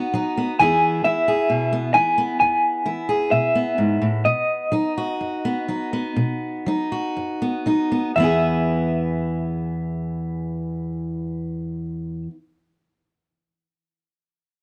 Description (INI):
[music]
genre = acoustic folk duo or small band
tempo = 58-67 BPM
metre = 4/4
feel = straight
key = E major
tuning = A4 = 440 Hz
[part]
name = electric guitar through a small old amp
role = melody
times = 0.0-12.2 s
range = D#5 to G#5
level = -23 LUFS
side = equal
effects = tremolo
[part]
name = fingerpicked steel-string acoustic guitar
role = accompaniment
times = 0.0-12.3 s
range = E2 to G#4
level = -24 LUFS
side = equal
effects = none
[sound]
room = small room ambience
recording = dry, close 1970s-style studio recording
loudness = -22 LUFS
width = mono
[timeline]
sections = 0.0-8.2 A section; 8.2-12.3 B section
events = slowing down 0.6-8.2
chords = 0.0 B; 0.6 E; 4.2 B; 8.2 E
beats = | 0.60 1.50 2.40 3.32 | 4.25 5.20 6.16 7.15 | 8.16 9.19 10.22 11.24